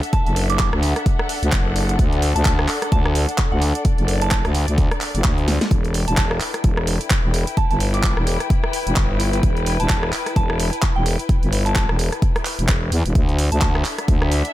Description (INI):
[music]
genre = bass house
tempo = 129 BPM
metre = 4/4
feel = swing 58% on 16ths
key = E minor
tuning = A4 = 439 Hz
[part]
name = house drum kit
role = drums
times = 0.0-14.5 s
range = handclaps, hi-hat, rim click, snare drum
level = -25 LUFS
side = right 1 dB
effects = none
[part]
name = muted studio string section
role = texture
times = 0.0-14.5 s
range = D4 to G5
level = -28 LUFS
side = left 3 dB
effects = sidechain pumping
[part]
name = soft synth bell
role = melody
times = 0.1-13.7 s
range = F#5 to D6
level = -28 LUFS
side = right 3 dB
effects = chorus, phaser, dub echo
[part]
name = electronic kick drum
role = drums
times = 0.1-14.2 s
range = none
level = -19 LUFS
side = equal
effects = none
[part]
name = growling FM bass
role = bass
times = 0.3-14.4 s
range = E1 to E2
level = -20 LUFS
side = equal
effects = tube saturation, sidechain pumping
[sound]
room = little or no reverb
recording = none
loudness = -17 LUFS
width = side -14 dB against mid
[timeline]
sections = 0.0-14.5 A section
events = drum fill 5.5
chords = 0.0 D; 5.7 Em; 13.2 D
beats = | 0.13 0.59 1.06 1.52 | 1.99 2.46 2.92 3.38 | 3.85 4.32 4.78 5.25 | 5.71 6.18 6.64 7.11 | 7.57 8.04 8.50 8.97 | 9.43 9.90 10.36 10.83 | 11.29 11.76 12.22 12.69 | 13.15 13.62 14.08